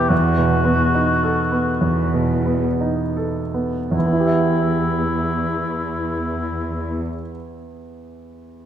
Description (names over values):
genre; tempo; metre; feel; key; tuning
classical, romantic movement for piano and orchestra; 52-76 BPM; 4/4; rubato; E minor; A4 = 440 Hz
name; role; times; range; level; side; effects
bright concert grand piano; melody; 0.0-8.7 s; E2 to E5; -20 LUFS; right 2 dB; none
warm oboe; second line; 0.0-7.0 s; E4 to G4; -24 LUFS; left 3 dB; none
warm studio cello section; bass; 0.1-7.0 s; E2; -26 LUFS; equal; none
room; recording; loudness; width
moderate scoring stage reverb, RT60 2.0 s; none; -18 LUFS; side -9 dB against mid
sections
0.0-3.9 A section; 3.9-8.3 B section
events
slowing down 0.0-3.9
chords
0.1 B7/E